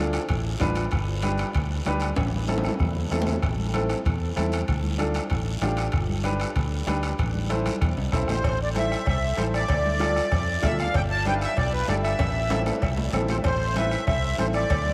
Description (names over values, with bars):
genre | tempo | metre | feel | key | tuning
latin, cumbia | 192 BPM | 4/4 | straight | A minor | A4 = 442 Hz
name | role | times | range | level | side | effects
clear upright piano | accompaniment | 0.0-14.6 s | C4 to F5 | -32 LUFS | equal | none
fingered electric bass | bass | 0.0-14.9 s | G1 to F2 | -30 LUFS | equal | none
bombo | percussion | 0.1-14.9 s | none | -32 LUFS | equal | none
guiro | percussion | 0.1-14.9 s | none | -43 LUFS | equal | none
timbales and cowbell | percussion | 0.1-14.9 s | none | -38 LUFS | equal | none
congas | percussion | 0.6-14.9 s | none | -36 LUFS | equal | none
accordion | melody | 8.3-14.9 s | B4 to A5 | -30 LUFS | equal | light tremolo tuning, diffuse ambient delay
room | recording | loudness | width
moderate huge ambient reverb, RT60 9.3 s | dreamy mix soaked in reverb | -25 LUFS | mono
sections
0.0-8.4 A section; 8.4-14.9 B section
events
drum fill 2.2-3.4, 7.7-8.4, 12.2-13.4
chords
0.0 Dm; 0.9 G; 2.2 Am; 4.7 Dm; 5.9 G; 7.2 Am; 9.7 Dm; 10.9 G; 12.2 Am